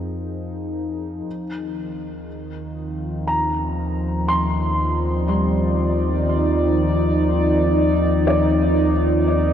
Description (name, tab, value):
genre	ambient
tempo	60 BPM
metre	4/4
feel	straight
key	unclear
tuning	A4 = 440 Hz
part	warbly tape-like pad	sustained chords	0.0-9.5 s	Eb3 to D5	-22 LUFS	equal	chorus, built-in reverb, phaser
part	felt-muted upright piano	arpeggios	0.0-9.5 s	G3 to C6	-26 LUFS	equal	ping-pong delay
part	warm sub bass	bass	0.0-9.5 s	Eb2 to F2	-24 LUFS	equal	none
part	analog drone	drone	2.8-9.5 s	F3 to C4	-24 LUFS	left 1 dB	chorus
room	wet huge ambient reverb, RT60 6.9 s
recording	worn, warbling old tape, cassette tape, warbly pitch drift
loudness	-18 LUFS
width	side -9 dB against mid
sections	0.0-9.5 A section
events	fade-in on ambient pad 0.0-9.5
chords	0.0 Fm7; 1.3 Ebmaj9